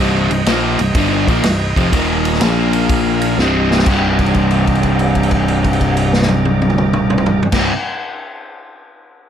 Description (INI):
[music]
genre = blues rock power trio and southern rock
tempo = 124 BPM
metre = 4/4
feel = swing 67% on 8ths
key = C minor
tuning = A4 = 440 Hz
[part]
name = overdriven tonewheel organ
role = sustained chords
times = 0.0-7.7 s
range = Bb3 to F5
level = -23 LUFS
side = right 3 dB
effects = slow rotary speaker
[part]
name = crunchy overdriven guitar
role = riff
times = 0.0-7.7 s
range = C2 to Bb3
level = -15 LUFS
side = equal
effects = none
[part]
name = picked electric bass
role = bass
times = 0.0-7.7 s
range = C1 to Bb1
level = -21 LUFS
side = equal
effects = none
[part]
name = vintage drum kit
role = drums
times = 0.3-7.6 s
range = crash cymbal, kick drum, ride cymbal, snare drum, toms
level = -18 LUFS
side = equal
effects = none
[sound]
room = moderate studio reverb, RT60 0.8 s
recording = none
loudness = -12 LUFS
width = side -9 dB against mid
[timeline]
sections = 0.0-3.9 A section; 3.9-7.8 B section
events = drum fill 3.4-3.9; held note 3.9-7.5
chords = 0.0 Cm; 1.9 Eb5; 2.4 Bb5; 3.4 Cm; 3.9 Cm7